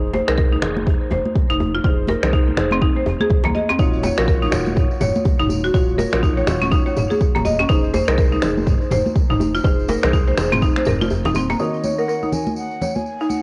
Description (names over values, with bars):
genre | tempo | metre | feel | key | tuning
afro house | 123 BPM | 4/4 | swing 59% on 16ths | Eb dorian | A4 = 440 Hz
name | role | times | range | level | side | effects
buzzing marimba with hard mallets | arpeggios | 0.0-13.3 s | Bb3 to Eb5 | -24 LUFS | equal | sidechain pumping, low-pass filter, cassette tape, tape echo
felt-muted upright piano | stabs | 0.0-13.4 s | Eb3 to Db5 | -28 LUFS | equal | sidechain pumping, low-pass filter, cassette tape, tape echo
round analog bass | bass | 0.0-11.5 s | Eb1 to C2 | -27 LUFS | equal | tube saturation, sidechain pumping
congas | percussion | 0.1-13.4 s | none | -29 LUFS | equal | none
djembe | percussion | 0.1-11.6 s | none | -30 LUFS | equal | none
deep house drum kit | drums | 0.3-11.0 s | finger snaps, toms | -29 LUFS | equal | cassette tape
electronic kick drum | drums | 0.4-10.7 s | none | -21 LUFS | equal | cassette tape
tambourine | percussion | 3.8-13.4 s | none | -42 LUFS | equal | none
breathy mellow concert flute | melody | 11.6-13.4 s | Eb5 to Ab5 | -31 LUFS | equal | cassette tape
room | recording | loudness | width
light reverb, small room reverb | home recording on cassette, nothing above 10.8 kHz | -19 LUFS | mono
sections
0.0-11.6 A section; 11.6-13.4 B section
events
break 11.1-11.6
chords
0.0 Fm7; 3.8 Ebm9; 7.7 Fm7; 11.6 Ebm7